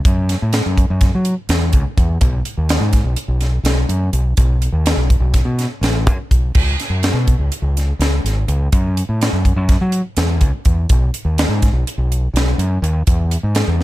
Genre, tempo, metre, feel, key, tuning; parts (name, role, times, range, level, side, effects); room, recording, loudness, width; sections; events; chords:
math rock and midwest emo; 249 BPM (eighths); 9/8; straight; A4 = 441 Hz
growling fingered electric bass; bass; 0.1-13.8 s; G#1 to F#3; -16 LUFS; equal; overdrive
crisp fusion drum kit; drums; 0.1-13.8 s; crash cymbal, hi-hat, kick drum, snare drum; -17 LUFS; equal
little or no reverb; -14 LUFS; side -16 dB against mid
0.0-13.8 A section